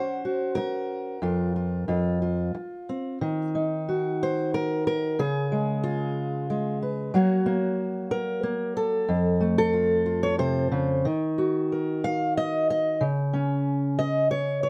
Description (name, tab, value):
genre	folk, solo fingerstyle acoustic guitar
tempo	92 BPM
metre	3/4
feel	straight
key	unclear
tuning	A4 = 445 Hz
part	fingerpicked steel-string acoustic guitar	solo	0.0-14.7 s	F2 to F5	-26 LUFS	equal	none
room	light reverb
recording	dark, warm production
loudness	-26 LUFS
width	mono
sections	0.0-3.2 A section; 3.2-14.7 B section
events	none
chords	0.0 Gb; 1.2 N.C.; 1.9 F5; 3.2 Ebm; 5.2 Db7; 7.1 Gb; 9.1 F; 11.0 Ebm; 13.0 N.C.